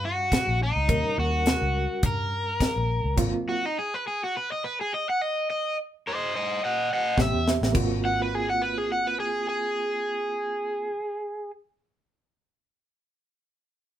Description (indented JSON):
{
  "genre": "straight-eighth soul blues",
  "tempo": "105 BPM",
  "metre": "4/4",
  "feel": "swing 55% on 16ths",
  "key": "Ab mixolydian",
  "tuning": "A4 = 438 Hz",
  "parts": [
    { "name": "crunchy overdriven guitar", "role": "melody", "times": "0.0-11.5 s", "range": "Eb4 to Gb5", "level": "-26 LUFS", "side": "equal", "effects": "none" },
    { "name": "overdriven reed electric piano", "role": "accompaniment", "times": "0.0-3.6, 7.2-10.9 s", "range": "Gb3 to G5", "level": "-31 LUFS", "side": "right 3 dB", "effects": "fast tremolo" },
    { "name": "vintage muted fingered electric bass", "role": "bass", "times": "0.0-3.3, 7.2-10.9 s", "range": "Ab1 to G2", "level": "-28 LUFS", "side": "equal", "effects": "none" },
    { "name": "tight funk drum kit", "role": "drums", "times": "0.3-3.3, 7.2-7.9 s", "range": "crash cymbal, hi-hat, kick drum, snare drum", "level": "-26 LUFS", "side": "equal", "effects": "none" }
  ],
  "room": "moderate studio reverb, RT60 0.5 s",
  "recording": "band playing live in one room",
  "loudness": "-24 LUFS",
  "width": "side -11 dB against mid",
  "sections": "0.0-7.7 A section; 7.7-10.0 B section",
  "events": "stop 3.2-7.2; reed electric piano fill 6.9-7.7; drum fill 7.2-7.7",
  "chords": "0.0 Eb9; 3.2 Ab13 (rootless); 7.2 A9; 7.7 Ab13"
}